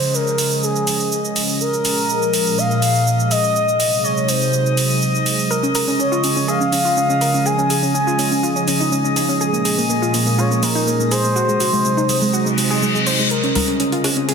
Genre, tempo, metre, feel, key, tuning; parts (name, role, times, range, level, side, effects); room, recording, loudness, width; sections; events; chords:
progressive house; 123 BPM; 4/4; straight; Db major; A4 = 441 Hz
expressive portamento lead; melody; 0.0-13.0 s; Ab4 to Ab5; -21 LUFS; left 1 dB; chorus, dub echo
lush unison pad; sustained chords; 0.0-14.3 s; Bb2 to Ab4; -21 LUFS; right 1 dB; chorus
electronic shaker and hi-hat; drums; 0.0-14.3 s; -22 LUFS; right 4 dB
downlifter and reverse cymbal; sound effects; 0.0-1.6, 12.5-13.3 s; -24 LUFS; left 3 dB
drifting glass-harmonics texture; texture; 0.0-14.3 s; Eb5 to Eb6; -26 LUFS; left 3 dB; chorus, built-in reverb
soft round pluck; arpeggios; 5.5-14.3 s; Ab3 to C5; -21 LUFS; equal; chorus, vintage 12-bit sampler grit, dub echo
congas and cowbell; percussion; 13.6-14.1 s; -24 LUFS; left 4 dB
moderate lush hall reverb, RT60 1.9 s, digital ambience; dense, heavily limited modern master; -15 LUFS; side -6 dB against mid
0.0-13.3 A section; 13.3-14.3 B section
filter sweep on analog synth pad 0.0-13.3; reverse cymbal 12.5-13.3; build-up 13.3-14.3
0.0 Db; 1.6 Bbm7; 3.6 Ab7/C; 5.5 Db; 9.4 Bbm7; 11.4 Ab7/C; 13.3 Dbmaj7